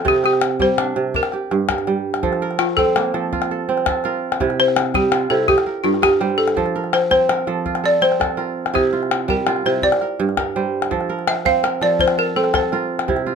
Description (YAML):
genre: west african traditional, West African string and xylophone music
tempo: 110 BPM (dotted quarters)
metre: 12/8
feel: straight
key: F major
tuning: A4 = 438 Hz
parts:
  - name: balafon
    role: melody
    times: 0.0-13.1 s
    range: F4 to F5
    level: -18 LUFS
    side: left 2 dB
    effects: none
  - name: kora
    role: arpeggios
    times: 0.0-13.3 s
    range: G2 to D5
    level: -20 LUFS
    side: right 5 dB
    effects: none
  - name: calabash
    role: percussion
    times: 0.1-13.2 s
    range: none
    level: -23 LUFS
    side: left 7 dB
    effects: none
room: light reverb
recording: minimal, uncompressed stereo recording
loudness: -16 LUFS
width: side -6 dB against mid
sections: 0.0-2.2 A section; 2.2-13.3 B section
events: balafon solo 2.2-13.3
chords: 0.0 C5; 1.1 Gm; 2.2 F; 4.4 C; 5.5 Gm; 6.6 F; 8.7 C; 9.8 Gm; 10.9 F